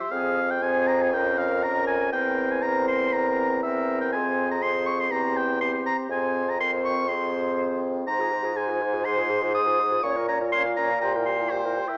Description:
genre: quick classical-period movement for wind quintet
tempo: 122 BPM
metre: 4/4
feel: straight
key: F minor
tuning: A4 = 441 Hz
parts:
  - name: silver concert flute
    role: melody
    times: 0.0-12.0 s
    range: Ab4 to C6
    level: -33 LUFS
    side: left 1 dB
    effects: none
  - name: clear oboe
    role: second line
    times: 0.0-12.0 s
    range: C5 to Eb6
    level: -26 LUFS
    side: equal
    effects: none
  - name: mellow French horn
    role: accompaniment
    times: 0.0-12.0 s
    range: C4 to Ab4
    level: -32 LUFS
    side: equal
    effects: none
  - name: warm clarinet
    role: accompaniment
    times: 0.0-12.0 s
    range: G4 to G5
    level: -31 LUFS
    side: equal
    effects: none
  - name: warm bassoon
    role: bass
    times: 0.1-11.8 s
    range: E2 to Bb2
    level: -27 LUFS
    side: equal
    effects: none
room: moderate recital hall reverb, RT60 1.4 s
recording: small speaker sound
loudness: -22 LUFS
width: side -31 dB against mid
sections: 0.1-12.0 A section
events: none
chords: 0.1 Fm; 1.1 Bbm/F; 2.1 C7/E; 4.1 Fm; 5.1 C/E; 6.1 Fm; 8.1 Fm/Ab; 10.0 Bbm; 11.0 C7/Bb

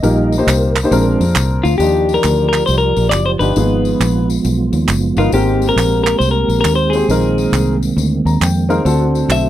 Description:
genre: uptempo gospel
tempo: 136 BPM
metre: 4/4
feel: swing 64% on 8ths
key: Eb major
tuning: A4 = 441 Hz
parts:
  - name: warm upright piano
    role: accompaniment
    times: 0.0-9.5 s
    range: Ab2 to Bb5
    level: -18 LUFS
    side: left 2 dB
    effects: none
  - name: mellow tonewheel organ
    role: sustained chords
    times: 0.0-9.5 s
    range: D3 to Eb5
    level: -19 LUFS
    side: right 4 dB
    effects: chorus vibrato, stopped rotary speaker
  - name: fingered electric bass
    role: bass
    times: 0.0-9.5 s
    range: Gb1 to F2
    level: -16 LUFS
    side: equal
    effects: none
  - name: tambourine and handclaps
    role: percussion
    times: 0.0-9.4 s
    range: none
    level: -23 LUFS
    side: right 3 dB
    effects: none
  - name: clean electric guitar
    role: melody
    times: 1.6-9.5 s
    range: F4 to Fb5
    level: -16 LUFS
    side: left 2 dB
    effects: none
room: light reverb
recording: dry, close 1970s-style studio recording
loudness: -12 LUFS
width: side -12 dB against mid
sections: 0.0-1.8 A section; 1.8-9.5 B section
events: tonewheel organ solo 0.0-1.8; upright piano fill 8.0-8.9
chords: 0.0 Eb/Bb; 0.9 Bb9; 1.8 Ebmaj9; 3.6 Abm6; 5.3 Abmaj9; 7.1 Bb9sus4; 8.9 D7

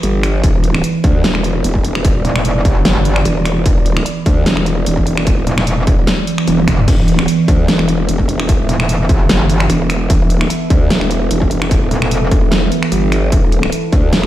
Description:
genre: heavy wobble dubstep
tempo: 149 BPM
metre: 4/4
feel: swing 54% on 16ths, half-time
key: E minor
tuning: A4 = 440 Hz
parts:
  - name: evolving wavetable pad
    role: sustained chords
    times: 0.0-14.3 s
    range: E3 to E5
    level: -19 LUFS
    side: right 1 dB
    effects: phaser, built-in reverb, sidechain pumping
  - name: growl bass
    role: bass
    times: 0.0-14.3 s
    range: E1 to D2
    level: -16 LUFS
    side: equal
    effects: chorus, overdrive
  - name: dubstep drum kit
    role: drums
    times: 0.0-14.3 s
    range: crash cymbal, finger snaps, hi-hat, snare drum, toms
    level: -19 LUFS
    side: equal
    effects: none
  - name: electronic kick drum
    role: drums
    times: 0.4-14.0 s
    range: none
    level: -15 LUFS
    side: equal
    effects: distortion
  - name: metallic wobble bass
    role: bass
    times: 2.2-12.3 s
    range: E1 to G1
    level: -14 LUFS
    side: equal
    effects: distortion, chorus, overdrive
room: light reverb, digital ambience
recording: played on a big sound system in a bare room, stone room reverb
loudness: -11 LUFS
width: side -13 dB against mid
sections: 0.0-14.3 A section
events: drum fill 6.5-6.9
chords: 0.0 E5

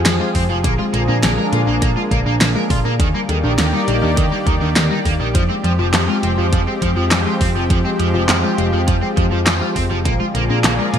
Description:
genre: synthwave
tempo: 102 BPM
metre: 4/4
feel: straight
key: F dorian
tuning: A4 = 440 Hz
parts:
  - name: lush unison pad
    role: sustained chords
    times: 0.0-11.0 s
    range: Eb3 to D5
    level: -21 LUFS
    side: left 1 dB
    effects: chorus, sidechain pumping
  - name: hollow-body short-scale picked electric bass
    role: bass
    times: 0.0-11.0 s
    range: F1 to Bb2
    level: -19 LUFS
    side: equal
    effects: none
  - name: warbly dusty pluck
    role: arpeggios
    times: 0.1-11.0 s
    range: D3 to F4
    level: -24 LUFS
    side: left 2 dB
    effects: chorus, ping-pong delay
  - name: overdriven electric guitar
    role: riff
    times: 0.1-11.0 s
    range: Eb3 to Bb4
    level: -23 LUFS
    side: right 2 dB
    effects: wide subtle chorus, ping-pong delay
  - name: pop drum kit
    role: drums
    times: 0.1-11.0 s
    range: handclaps, hi-hat, snare drum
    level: -19 LUFS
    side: equal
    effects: gated reverb
  - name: electronic kick drum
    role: drums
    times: 0.3-10.2 s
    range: none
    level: -19 LUFS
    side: equal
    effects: none
room: light reverb, digital ambience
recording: bright 1980s-style digital production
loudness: -14 LUFS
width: side -8 dB against mid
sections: 0.0-11.0 A section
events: none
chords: 0.0 Fmadd9; 0.6 Bb7; 3.0 Ebmaj7; 5.3 Fmadd9; 10.1 Bb7

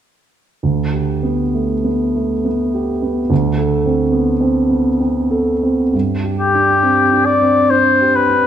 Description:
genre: classical, romantic duo for oboe and grand piano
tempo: 61-73 BPM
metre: 3/4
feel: rubato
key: G major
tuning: A4 = 439 Hz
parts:
  - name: dark baby grand piano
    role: accompaniment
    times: 0.6-8.5 s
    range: D2 to A4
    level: -15 LUFS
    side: right 2 dB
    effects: none
  - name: warm oboe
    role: melody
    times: 6.4-8.5 s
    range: G4 to D5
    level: -12 LUFS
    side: left 4 dB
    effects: none
room: wet recital hall reverb, RT60 1.6 s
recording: dark, warm production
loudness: -13 LUFS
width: side -9 dB against mid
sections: 0.6-5.9 A section; 5.9-8.5 B section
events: none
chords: 0.6 G/D; 3.3 D5; 5.9 G5

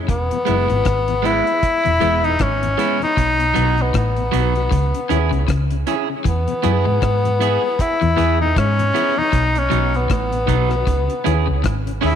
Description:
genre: roots reggae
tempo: 78 BPM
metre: 4/4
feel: swing 58% on 16ths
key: E major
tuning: A4 = 440 Hz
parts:
  - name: breathy tenor saxophone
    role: melody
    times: 0.1-12.2 s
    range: B3 to E4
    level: -19 LUFS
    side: left 2 dB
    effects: tape echo
  - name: electric guitar at the edge of break-up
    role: riff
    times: 0.1-12.2 s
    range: E2 to G#3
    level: -27 LUFS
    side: left 7 dB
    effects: none
  - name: hollow-body short-scale fingered electric bass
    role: bass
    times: 0.1-12.2 s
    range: E1 to G#2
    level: -20 LUFS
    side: right 1 dB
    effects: none
  - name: deep reggae drum kit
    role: drums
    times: 0.1-12.2 s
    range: hi-hat, kick drum, rim click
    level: -23 LUFS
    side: left 1 dB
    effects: none
  - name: tonewheel organ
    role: accompaniment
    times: 0.3-12.1 s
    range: E2 to C#4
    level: -28 LUFS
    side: left 8 dB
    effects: chorus vibrato, slow rotary speaker, tape echo
  - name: electric guitar at the edge of break-up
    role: accompaniment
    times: 0.5-12.2 s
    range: F#3 to G#4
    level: -24 LUFS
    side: right 11 dB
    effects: tape echo
room: moderate echo chamber reverb, RT60 2.2 s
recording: 1960s-style stereo with parts hard left and right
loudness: -15 LUFS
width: side -8 dB against mid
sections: 0.1-12.2 A section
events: none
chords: 0.1 E; 3.2 B; 4.7 C#m; 6.3 E; 9.3 B; 10.9 C#m

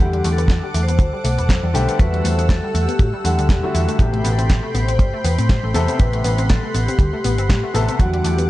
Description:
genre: nu-disco, nu disco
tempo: 120 BPM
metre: 4/4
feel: swing 56% on 16ths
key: A dorian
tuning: A4 = 440 Hz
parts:
  - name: vibraphone with medium hard mallets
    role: melody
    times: 0.0-8.5 s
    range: F#4 to C5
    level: -27 LUFS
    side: left 1 dB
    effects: tape echo
  - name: warm grand piano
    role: accompaniment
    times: 0.0-8.5 s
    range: B2 to F#5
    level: -26 LUFS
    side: left 2 dB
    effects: slapback echo
  - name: lush unison pad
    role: sustained chords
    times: 0.0-8.5 s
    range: A4 to E6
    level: -29 LUFS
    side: equal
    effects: chorus, sidechain pumping
  - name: analog pluck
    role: arpeggios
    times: 0.0-8.4 s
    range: F#3 to E4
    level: -28 LUFS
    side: left 4 dB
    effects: chorus, sidechain pumping, tape echo
  - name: hollow-body short-scale picked electric bass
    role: bass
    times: 0.0-8.5 s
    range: E1 to A2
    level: -19 LUFS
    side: equal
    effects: tube saturation
  - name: house drum kit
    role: drums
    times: 0.0-8.5 s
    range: hi-hat, shaker, snare drum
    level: -28 LUFS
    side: right 1 dB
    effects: small room ambience
  - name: kick drum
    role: drums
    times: 0.5-8.1 s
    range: none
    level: -15 LUFS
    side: equal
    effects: small room ambience
room: studio reverb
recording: nothing above 10.4 kHz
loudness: -15 LUFS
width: side -16 dB against mid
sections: 0.0-8.5 A section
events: none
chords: 0.0 Em11; 4.0 Am9; 8.0 Em11

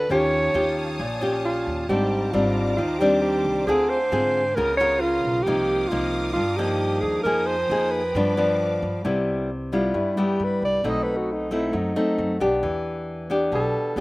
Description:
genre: bossa nova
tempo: 134 BPM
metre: 4/4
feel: straight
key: Eb major, C major from 9.0 s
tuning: A4 = 439 Hz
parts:
  - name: breathy alto saxophone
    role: melody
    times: 0.0-14.0 s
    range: D#4 to D#5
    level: -24 LUFS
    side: right 1 dB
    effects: none
  - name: nylon-string guitar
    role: accompaniment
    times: 0.0-14.0 s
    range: G2 to Bb4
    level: -23 LUFS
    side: left 1 dB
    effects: none
  - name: clear studio string section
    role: sustained chords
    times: 0.0-9.0 s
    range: Bb4 to Eb6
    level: -35 LUFS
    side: equal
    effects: none
  - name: upright bass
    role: bass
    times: 0.0-14.0 s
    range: Ab1 to Ab2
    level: -32 LUFS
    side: equal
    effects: none
room: little or no reverb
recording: recorded outdoors, with no room sound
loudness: -20 LUFS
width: side -21 dB against mid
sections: 0.0-9.0 A section; 9.0-14.0 B section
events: alto saxophone solo 9.0-14.0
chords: 0.1 Eb9; 1.9 Abmaj9#11; 3.7 Dm7b5; 4.6 Db13; 5.5 Cm11; 7.3 Fm11; 8.2 G7; 9.0 Cmaj7; 10.8 B7b9; 12.6 Em7

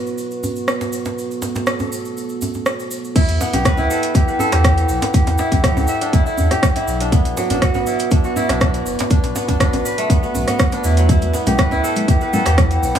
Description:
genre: afro house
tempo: 121 BPM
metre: 4/4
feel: straight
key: E minor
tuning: A4 = 436 Hz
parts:
  - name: dark analog pad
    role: sustained chords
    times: 0.0-13.0 s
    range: B3 to F#5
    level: -25 LUFS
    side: equal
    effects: chorus, sidechain pumping
  - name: cabasa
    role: percussion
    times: 0.1-13.0 s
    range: none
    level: -33 LUFS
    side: right 2 dB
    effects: none
  - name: djembe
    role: percussion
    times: 0.4-13.0 s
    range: none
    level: -26 LUFS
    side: right 2 dB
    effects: none
  - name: afro-pop drum kit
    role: drums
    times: 0.7-13.0 s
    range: crash cymbal, hi-hat, rim click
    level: -23 LUFS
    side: right 1 dB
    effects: none
  - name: kora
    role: arpeggios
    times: 3.2-13.0 s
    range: F#3 to E5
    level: -20 LUFS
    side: equal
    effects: sidechain pumping, tape echo
  - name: electronic kick drum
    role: drums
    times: 3.2-12.7 s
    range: none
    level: -16 LUFS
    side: equal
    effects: none
  - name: warm sub bass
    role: bass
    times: 3.3-12.9 s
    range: F#1 to E2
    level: -20 LUFS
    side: equal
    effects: tube saturation, sidechain pumping
  - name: congas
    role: percussion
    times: 11.1-12.9 s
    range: none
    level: -23 LUFS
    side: left 2 dB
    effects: none
room: light reverb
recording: none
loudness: -15 LUFS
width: side -9 dB against mid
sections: 0.0-3.2 A section; 3.2-13.0 B section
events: drop 3.2-13.0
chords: 0.0 B5; 3.2 Em7; 7.1 Bm; 11.1 Em7

